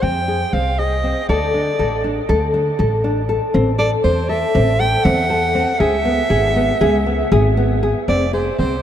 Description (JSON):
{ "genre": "contemporary instrumental, chamber music in an uneven meter", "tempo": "238 BPM (eighths)", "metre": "9/8", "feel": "straight", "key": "unclear", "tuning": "A4 = 440 Hz", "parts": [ { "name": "breathy soprano saxophone", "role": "melody", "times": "0.0-8.8 s", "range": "C5 to G5", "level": "-21 LUFS", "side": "right 2 dB", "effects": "none" }, { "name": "nylon-string guitar", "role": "arpeggios", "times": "0.0-8.8 s", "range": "Cb4 to A4", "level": "-19 LUFS", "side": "left 2 dB", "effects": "none" }, { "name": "upright bass", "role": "bass", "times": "0.0-8.8 s", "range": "F1 to F2", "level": "-19 LUFS", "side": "equal", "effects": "none" } ], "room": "wet huge ambient reverb, RT60 9.1 s", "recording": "in a vast, echoing space", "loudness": "-15 LUFS", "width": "side -10 dB against mid", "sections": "0.0-8.1 A section", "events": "none", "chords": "0.0 Fm; 1.3 D5; 3.5 Am; 5.8 Dbm7; 8.1 Fm" }